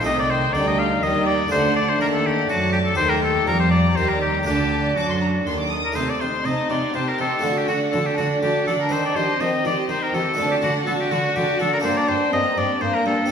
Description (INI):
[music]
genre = classical, baroque-style concerto movement with solo episodes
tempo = 123 BPM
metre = 3/4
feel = straight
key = unclear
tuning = A4 = 436 Hz
[part]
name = bright oboe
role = melody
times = 0.0-13.3 s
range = F#4 to F5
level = -23 LUFS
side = left 2 dB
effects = none
[part]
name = rich symphonic violin section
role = melody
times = 0.0-13.3 s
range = Eb5 to Eb6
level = -31 LUFS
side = left 2 dB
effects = none
[part]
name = rich chamber violin section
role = second line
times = 0.0-13.3 s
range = Bb3 to A4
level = -26 LUFS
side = left 1 dB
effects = none
[part]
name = harpsichord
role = accompaniment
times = 0.0-13.3 s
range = G2 to C5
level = -28 LUFS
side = right 1 dB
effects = none
[part]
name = rich chamber viola section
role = accompaniment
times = 0.0-13.3 s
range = Eb3 to G4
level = -27 LUFS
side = equal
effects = none
[part]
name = rich chamber double bass section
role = bass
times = 0.0-6.0 s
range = C2 to F#2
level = -26 LUFS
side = right 3 dB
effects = none
[part]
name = warm chamber cello section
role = bass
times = 0.0-13.1 s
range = G2 to F#3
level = -27 LUFS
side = right 2 dB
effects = none
[sound]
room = wet recital hall reverb, RT60 1.4 s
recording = recorded in a church or concert hall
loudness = -18 LUFS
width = side -7 dB against mid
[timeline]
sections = 0.0-6.0 A section; 6.0-13.3 A section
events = none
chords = 0.1 Am7b5/C; 1.5 D; 3.0 Eb; 4.5 D; 6.0 Adim/C; 7.4 D; 8.9 Cm/Eb; 10.4 D; 11.8 Gm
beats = | 0.06 0.55 1.03 | 1.52 2.01 2.49 | 2.98 3.47 3.97 | 4.46 4.97 5.46 | 5.96 6.46 6.95 | 7.44 7.93 8.43 | 8.92 9.41 9.89 | 10.38 10.87 11.36 | 11.84 12.33 12.82 | 13.30